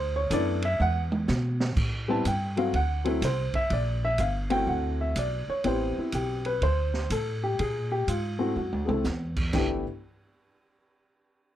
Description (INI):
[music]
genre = jazz piano trio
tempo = 124 BPM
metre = 4/4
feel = swing 66% on 8ths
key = unclear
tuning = A4 = 440 Hz
[part]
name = dark baby grand piano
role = melody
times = 0.0-9.8 s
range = F#3 to A5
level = -28 LUFS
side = left 1 dB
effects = none
[part]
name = upright bass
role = bass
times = 0.0-9.8 s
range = G1 to B2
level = -29 LUFS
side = equal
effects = none
[part]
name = open jazz drum kit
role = drums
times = 0.3-9.7 s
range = crash cymbal, hi-hat, kick drum, ride cymbal, snare drum, toms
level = -34 LUFS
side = right 2 dB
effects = none
[sound]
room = light reverb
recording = dark, warm production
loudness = -25 LUFS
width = side -12 dB against mid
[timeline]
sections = 0.0-1.8 A section; 1.8-9.5 B section; 9.5-11.5 C section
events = drum fill 0.8-1.8, 8.6-9.0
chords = 0.0 G69 (rootless); 0.8 E5; 1.8 Am7; 2.7 D9; 3.7 Bb5; 4.7 D9; 5.6 Am9; 6.6 D5; 7.6 Bb5; 8.6 D9; 9.5 N.C.